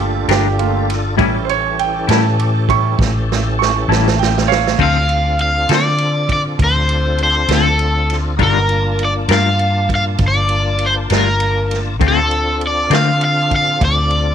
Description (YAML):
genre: slow blues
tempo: 66 BPM (dotted quarters)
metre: 12/8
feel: straight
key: D minor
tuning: A4 = 440 Hz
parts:
  - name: clear concert grand piano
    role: accompaniment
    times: 0.0-4.8 s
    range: G3 to C#6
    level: -18 LUFS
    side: right 12 dB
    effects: none
  - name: tonewheel organ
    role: sustained chords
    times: 0.0-14.3 s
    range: E3 to A5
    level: -24 LUFS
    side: left 1 dB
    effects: overdrive, chorus vibrato, slow rotary speaker
  - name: vintage muted fingered electric bass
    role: bass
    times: 0.0-14.3 s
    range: G1 to D3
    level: -18 LUFS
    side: left 1 dB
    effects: none
  - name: semi-hollow electric guitar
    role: accompaniment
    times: 0.3-13.1 s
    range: A2 to Bb4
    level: -18 LUFS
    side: left 16 dB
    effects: tremolo
  - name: swinging big-band drum kit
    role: drums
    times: 0.3-14.2 s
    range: crash cymbal, kick drum, ride cymbal, snare drum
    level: -21 LUFS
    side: right 4 dB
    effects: none
  - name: overdriven semi-hollow guitar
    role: melody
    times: 4.8-14.3 s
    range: A4 to F5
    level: -16 LUFS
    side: equal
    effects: slapback echo
room: little or no reverb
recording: 1960s-style stereo with parts hard left and right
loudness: -13 LUFS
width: side -8 dB against mid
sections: 0.0-4.8 A section; 4.8-14.3 B section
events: grand piano solo 0.0-4.8; drum fill 3.0-4.8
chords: 0.0 Gm7; 1.2 A7; 4.8 Dm7; 8.4 Gm7; 12.0 Dm7